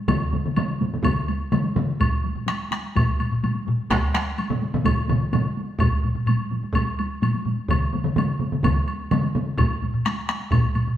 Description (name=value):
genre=japanese traditional, taiko drum ensemble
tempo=127 BPM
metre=4/4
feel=straight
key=none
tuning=none
part: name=taiko ensemble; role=percussion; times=0.1-10.9 s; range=none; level=-28 LUFS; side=equal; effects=none
part: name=taiko ensemble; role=percussion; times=0.1-9.5 s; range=none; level=-24 LUFS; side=equal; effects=none
part: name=taiko ensemble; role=percussion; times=0.1-10.6 s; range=none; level=-25 LUFS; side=right 1 dB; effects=none
part: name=woodblock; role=percussion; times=0.1-10.9 s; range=none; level=-31 LUFS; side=left 1 dB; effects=none
part: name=taiko ensemble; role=percussion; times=2.0-11.0 s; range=none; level=-25 LUFS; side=equal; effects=none
room=wet stone room reverb, RT60 1.3 s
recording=band playing live in one room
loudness=-21 LUFS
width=side -11 dB against mid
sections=0.0-11.0 A section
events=none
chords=none